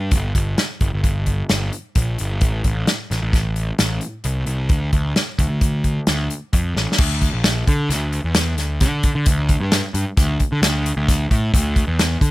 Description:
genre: math rock and midwest emo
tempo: 131 BPM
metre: 5/4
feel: straight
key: unclear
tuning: A4 = 438 Hz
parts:
  - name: fuzz picked electric bass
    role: bass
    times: 0.0-12.3 s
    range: G1 to D3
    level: -20 LUFS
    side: equal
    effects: overdrive
  - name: loose indie drum kit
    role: drums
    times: 0.1-12.3 s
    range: crash cymbal, hi-hat, kick drum, snare drum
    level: -18 LUFS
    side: equal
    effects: none
room: little or no reverb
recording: none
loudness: -17 LUFS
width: side -18 dB against mid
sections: 0.0-7.0 A section; 7.0-12.3 B section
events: drum fill 6.8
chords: none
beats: | 0.12 0.58 1.03 1.49 1.95 | 2.41 2.87 3.33 3.79 4.25 | 4.71 5.16 5.62 6.08 6.53 | 6.99 7.45 7.90 8.36 8.81 | 9.26 9.72 10.17 10.62 11.08 | 11.53 11.98

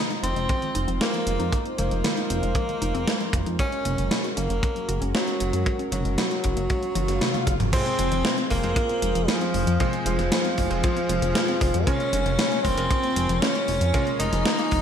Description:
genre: synthwave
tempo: 116 BPM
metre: 4/4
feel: straight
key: F phrygian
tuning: A4 = 441 Hz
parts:
  - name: breathy tenor saxophone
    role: melody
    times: 0.0-14.8 s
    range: F3 to Eb4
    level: -27 LUFS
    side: equal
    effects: ping-pong delay
  - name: chorused pulse-width pad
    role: sustained chords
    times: 0.0-14.8 s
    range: Ab3 to Db6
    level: -33 LUFS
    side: right 1 dB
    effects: none
  - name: warbly dusty pluck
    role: arpeggios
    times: 0.0-14.8 s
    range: Eb3 to Ab4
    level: -33 LUFS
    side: left 4 dB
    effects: chorus, ping-pong delay
  - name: gated 80s digital drum machine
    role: drums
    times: 0.1-14.8 s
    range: crash cymbal, hi-hat, snare drum, toms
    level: -27 LUFS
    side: equal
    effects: gated reverb, gated reverb snare
  - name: chorused synth bass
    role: bass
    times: 0.2-14.8 s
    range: F1 to Gb2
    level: -26 LUFS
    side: equal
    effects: none
  - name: kick drum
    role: drums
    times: 0.5-14.8 s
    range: none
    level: -26 LUFS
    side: equal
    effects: none
  - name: swell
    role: sound effects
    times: 6.9-7.7 s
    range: none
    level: -35 LUFS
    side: left 5 dB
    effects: none
  - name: airy dreamy lead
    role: second line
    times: 7.7-14.8 s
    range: F3 to Eb4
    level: -31 LUFS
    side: right 1 dB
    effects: chorus
  - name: bright electric grand piano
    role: stabs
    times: 7.7-14.8 s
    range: Ab3 to C5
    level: -34 LUFS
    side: right 3 dB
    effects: none
room: moderate lush hall reverb, RT60 1.7 s, digital ambience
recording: bright 1980s-style digital production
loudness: -21 LUFS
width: side -8 dB against mid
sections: 0.0-7.7 A section; 7.7-14.8 B section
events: swell 6.9-7.7; drum fill 7.0-7.7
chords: 0.0 Fm7; 3.6 Gbadd9; 7.7 Fm; 11.9 Bbm7/F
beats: 0.49 1.01 | 1.52 2.04 2.56 3.08 | 3.59 4.11 4.63 5.15 | 5.66 6.18 6.70 7.21 | 7.73 8.25 8.77 9.28 | 9.80 10.32 10.84 11.35 | 11.87 12.39 12.90 13.42 | 13.94 14.46

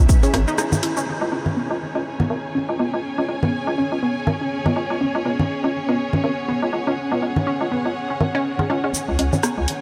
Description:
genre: minimal techno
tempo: 122 BPM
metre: 4/4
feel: swing 57% on 16ths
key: C# minor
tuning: A4 = 441 Hz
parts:
  - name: hollow knocking FM bass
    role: bass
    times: 0.0-9.7 s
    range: G#1 to E2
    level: -26 LUFS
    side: equal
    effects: sidechain pumping, high-pass filter
  - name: dark chamber string section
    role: texture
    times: 0.0-9.8 s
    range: C#4 to G#5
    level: -30 LUFS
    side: equal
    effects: sidechain pumping
  - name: swarming drone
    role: texture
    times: 0.2-9.0 s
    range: C#4 to E4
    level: -37 LUFS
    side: equal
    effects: none
  - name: house drum kit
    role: drums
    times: 0.1-1.1, 8.9-9.8 s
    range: cabasa, hi-hat, rim click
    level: -30 LUFS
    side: equal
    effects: high-pass filter on hats, low-pass filter on hats, high-pass filter on perc, low-pass filter on perc, high-pass filter on snare, low-pass filter on snare, high-pass filter on room, low-pass filter on room
  - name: resonant blip pluck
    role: riff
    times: 0.2-9.5 s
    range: B3 to E4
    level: -27 LUFS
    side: equal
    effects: chorus, sidechain pumping, analog delay
  - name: filtered dub chord stab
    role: stabs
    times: 0.2-0.3, 9.3-9.4 s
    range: C#4 to C#5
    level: -35 LUFS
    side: equal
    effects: none
  - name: congas and woodblock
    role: percussion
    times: 0.3-9.4 s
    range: none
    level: -28 LUFS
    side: equal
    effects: tape echo
room: wet huge ambient reverb, RT60 8.8 s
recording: dreamy mix soaked in reverb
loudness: -22 LUFS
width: mono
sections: 0.0-1.1 A section; 1.1-8.9 B section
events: break 0.6-1.1; band accent 0.6; filter sweep on synth pluck 1.1-8.9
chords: 0.0 C#5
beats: 0.09 0.58 | 1.07 1.57 2.06 2.55 | 3.04 3.53 4.03 4.52 | 5.01 5.50 5.99 6.48 | 6.98 7.47 7.96 8.45 | 8.94 9.44

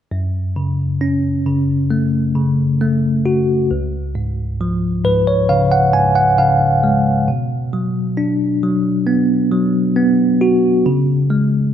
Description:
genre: pop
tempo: 67 BPM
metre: 4/4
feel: straight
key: F# harmonic minor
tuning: A4 = 441 Hz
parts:
  - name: bell-like tine electric piano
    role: accompaniment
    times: 0.1-11.7 s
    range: C#2 to G#5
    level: -14 LUFS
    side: equal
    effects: fast stereo tremolo
room: wet concert hall reverb, RT60 1.9 s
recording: none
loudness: -14 LUFS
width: side -9 dB against mid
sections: 0.1-11.7 A section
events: tine electric piano fill 4.6-7.3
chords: 0.1 F#m; 3.7 C#; 7.3 Bm; 10.9 C#5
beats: | 0.12 1.01 1.91 2.81 | 3.70 4.60 5.49 6.39 | 7.28 8.18 9.07 9.97 | 10.86

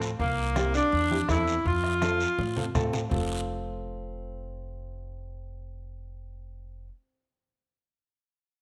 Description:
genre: latin, cumbia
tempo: 164 BPM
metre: 4/4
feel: straight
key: F major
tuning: A4 = 440 Hz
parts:
  - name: flamenco guitar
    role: accompaniment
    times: 0.0-6.9 s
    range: C4 to A4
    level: -38 LUFS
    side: equal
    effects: none
  - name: upright bass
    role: bass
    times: 0.0-6.9 s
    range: F1 to A2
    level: -35 LUFS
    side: equal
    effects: none
  - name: guiro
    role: percussion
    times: 0.0-3.2 s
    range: none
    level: -43 LUFS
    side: equal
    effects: none
  - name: clear saxophone section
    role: melody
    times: 0.2-2.7 s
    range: Bb3 to F4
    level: -29 LUFS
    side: equal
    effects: none
  - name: bombo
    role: percussion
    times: 0.2-3.2 s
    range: none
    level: -36 LUFS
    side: equal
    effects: none
  - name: congas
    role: percussion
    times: 0.4-3.2 s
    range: none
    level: -37 LUFS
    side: equal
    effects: none
room: moderate echo chamber reverb, RT60 1.7 s, studio reverb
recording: none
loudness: -27 LUFS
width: mono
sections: 0.0-3.1 A section; 3.1-6.0 B section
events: drum fill 2.4-3.1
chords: 0.2 C7; 1.7 F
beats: | 0.20 0.56 0.93 1.29 | 1.65 2.02 2.38 2.75 | 3.11 3.48 3.84 4.21 | 4.57 4.94 5.30 5.67

